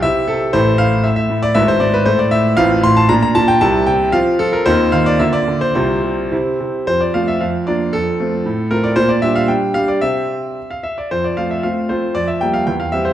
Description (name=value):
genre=classical-period piano sonatina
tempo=105-118 BPM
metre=2/4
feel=rubato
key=F major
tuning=A4 = 440 Hz
part: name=bright concert grand piano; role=solo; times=0.0-13.1 s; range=G#1 to C6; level=-13 LUFS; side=equal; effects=none
room=wet recital hall reverb, RT60 1.7 s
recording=dark, warm production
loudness=-13 LUFS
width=side -11 dB against mid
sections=0.0-6.9 A section; 6.9-13.1 B section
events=none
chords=0.0 C; 0.5 A5; 1.6 E/G#; 2.1 A5; 2.6 F/A; 3.1 Bb; 3.6 C; 4.1 F5; 4.7 F5/Eb; 5.2 Bb/D; 5.8 F5/C; 6.3 C; 6.9 F; 7.4 Bb/F; 7.9 F; 8.5 F/A; 9.0 Gm/Bb; 10.0 C; 11.1 F; 12.2 Gm7/F